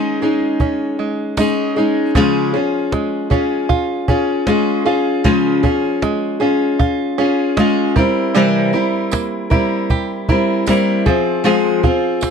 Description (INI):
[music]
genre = acoustic pop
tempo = 78 BPM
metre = 4/4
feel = straight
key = Db major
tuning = A4 = 444 Hz
[part]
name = fingerpicked steel-string acoustic guitar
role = accompaniment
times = 0.0-12.3 s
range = C3 to Bb4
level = -15 LUFS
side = left 2 dB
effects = none
[part]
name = open-back banjo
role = arpeggios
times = 0.0-12.3 s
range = Eb3 to G4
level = -23 LUFS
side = right 9 dB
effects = none
[part]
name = cajon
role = drums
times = 0.2-12.3 s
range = none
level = -18 LUFS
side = right 1 dB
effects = none
[part]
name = tambourine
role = percussion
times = 1.4-1.6, 9.1-12.3 s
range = none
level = -32 LUFS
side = right 26 dB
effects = none
[sound]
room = light reverb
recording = dry, close 1970s-style studio recording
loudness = -14 LUFS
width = side -6 dB against mid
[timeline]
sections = 0.0-2.2 A section; 2.2-12.3 B section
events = none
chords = 0.0 Absus4; 2.2 Db; 8.0 C7; 11.1 Fm